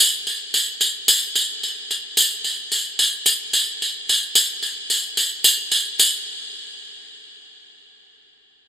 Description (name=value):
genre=pop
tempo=110 BPM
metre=4/4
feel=straight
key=none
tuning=none
part: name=tambourine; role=percussion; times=0.3-6.2 s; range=none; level=-16 LUFS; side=equal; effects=none
room=moderate huge ambient reverb, RT60 7.9 s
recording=dreamy mix soaked in reverb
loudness=-16 LUFS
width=side -10 dB against mid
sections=0.0-1.6 A section; 1.6-6.0 B section; 6.0-8.2 C section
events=none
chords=none